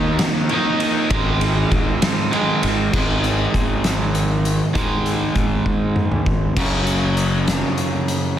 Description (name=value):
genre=quiet-loud alternative rock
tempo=66 BPM (dotted quarters)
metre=6/8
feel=straight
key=unclear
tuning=A4 = 440 Hz
part: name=crunchy overdriven guitar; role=riff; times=0.0-8.4 s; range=F#2 to D#4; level=-20 LUFS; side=right 1 dB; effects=none
part: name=fuzz fingered electric bass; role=bass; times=0.0-7.6 s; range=F#1 to G#2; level=-23 LUFS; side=equal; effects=overdrive
part: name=oversized low-tuned drum kit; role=drums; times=0.2-8.2 s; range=crash cymbal, hi-hat, kick drum, ride cymbal, snare drum, toms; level=-22 LUFS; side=equal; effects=none
room=light reverb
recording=dense, heavily limited modern master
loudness=-16 LUFS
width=side -10 dB against mid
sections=0.0-2.9 A section; 2.9-6.6 B section; 6.6-8.4 C section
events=drum fill 5.7-6.6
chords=0.0 D#5; 1.1 G#5; 6.6 F#5